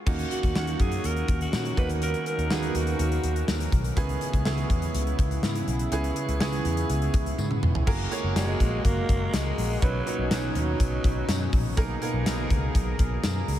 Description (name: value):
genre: 1980s-style pop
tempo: 123 BPM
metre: 4/4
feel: straight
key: F# major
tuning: A4 = 440 Hz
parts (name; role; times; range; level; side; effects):
- clear baby grand piano; accompaniment; 0.1-13.6 s; A#3 to C#5; -32 LUFS; right 4 dB; wide subtle chorus
- chorused pulse-width pad; sustained chords; 0.1-13.6 s; B2 to A#4; -33 LUFS; left 1 dB; none
- vintage muted picked electric bass; bass; 0.1-13.6 s; E1 to A#2; -28 LUFS; equal; none
- gated 80s drum kit; drums; 0.1-13.6 s; crash cymbal, hi-hat, kick drum, snare drum, tambourine, toms; -27 LUFS; equal; none
- breathy alto saxophone; melody; 0.3-3.5, 8.4-11.5 s; F#3 to B4; -34 LUFS; equal; tape echo
- tambourine; percussion; 0.6-13.4 s; none; -48 LUFS; left 6 dB; none
room: light reverb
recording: none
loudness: -23 LUFS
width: side -12 dB against mid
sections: 0.1-7.9 A section; 7.9-13.6 B section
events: drum fill 7.4-7.9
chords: 0.1 D#m7; 1.8 Bmaj7/D#; 4.0 C#m7; 7.9 F#add9; 9.8 Badd9; 11.8 G#madd9/B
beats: | 0.07 0.55 1.04 1.53 | 2.02 2.50 2.99 3.48 | 3.97 4.46 4.94 5.43 | 5.92 6.41 6.90 7.38 | 7.87 8.36 8.85 9.34 | 9.82 10.31 10.80 11.29 | 11.77 12.26 12.75 13.24